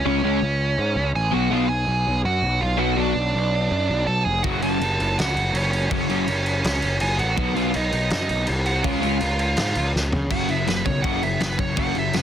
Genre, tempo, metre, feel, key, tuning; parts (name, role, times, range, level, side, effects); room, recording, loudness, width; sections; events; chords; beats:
punk rock; 164 BPM; 4/4; straight; F# harmonic minor; A4 = 440 Hz
nasal lead guitar with a parked wah; melody; 0.0-12.2 s; C#4 to A5; -24 LUFS; right 3 dB; overdrive
crunchy overdriven guitar; riff; 0.1-12.2 s; F#2 to C#4; -23 LUFS; left 2 dB
fuzz picked electric bass; bass; 0.1-12.2 s; E#1 to C#3; -24 LUFS; equal; overdrive
loose indie drum kit; drums; 4.4-12.2 s; crash cymbal, kick drum, snare drum, toms; -25 LUFS; equal
little or no reverb; dense, heavily limited modern master; -19 LUFS; side -9 dB against mid
0.0-10.3 A section; 10.3-12.2 B section
half time 0.0-10.3; drum fill 9.9-10.3; lead electric guitar solo 10.3-12.2
0.0 C#5; 1.3 Bm; 4.4 F#m; 7.4 B; 8.8 C#; 10.3 F#5
| 0.04 0.41 0.78 1.14 | 1.51 1.88 2.24 2.61 | 2.98 3.34 3.71 4.08 | 4.44 4.81 5.18 5.54 | 5.91 6.28 6.64 7.01 | 7.38 7.74 8.11 8.47 | 8.84 9.21 9.57 9.94 | 10.30 10.67 11.04 11.40 | 11.77 12.14